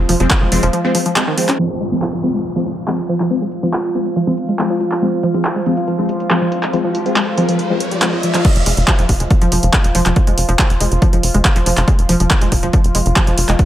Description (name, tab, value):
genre	driving peak-time techno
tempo	140 BPM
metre	4/4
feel	straight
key	F minor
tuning	A4 = 439 Hz
part	tight sequencer bass	bass	0.0-0.7, 8.6-13.6 s	F1	-17 LUFS	equal	sidechain pumping
part	analog drone	drone	0.0-13.7 s	F3 to F4	-23 LUFS	equal	chorus, sidechain pumping
part	analog pluck	riff	0.1-13.5 s	Eb3 to F4	-20 LUFS	right 1 dB	chorus, tube saturation, sidechain pumping, dub echo
part	punchy analog drum machine	drums	0.1-13.7 s	crash cymbal, handclaps, hi-hat	-20 LUFS	equal	overdrive, sidechain pumping on hats, sidechain pumping on cymbals
part	rave stab	stabs	0.2-8.1 s	F3 to C4	-20 LUFS	left 2 dB	chorus, built-in reverb, sidechain pumping, dub echo
part	electronic kick drum	drums	0.3-0.4, 8.4-13.7 s	none	-14 LUFS	equal	overdrive
part	downlifter and riser	sound effects	1.6-8.4 s	none	-27 LUFS	right 1 dB	none
room	light reverb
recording	low-pass filter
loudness	-13 LUFS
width	side -12 dB against mid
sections	0.0-1.6 A section; 1.6-8.4 B section; 8.4-13.7 C section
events	filter sweep on synth arpeggio sound 1.6-8.4; filter sweep 1.6-8.4; riser 6.5-8.4; drop 8.4-13.7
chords	0.0 Fm; 8.4 N.C.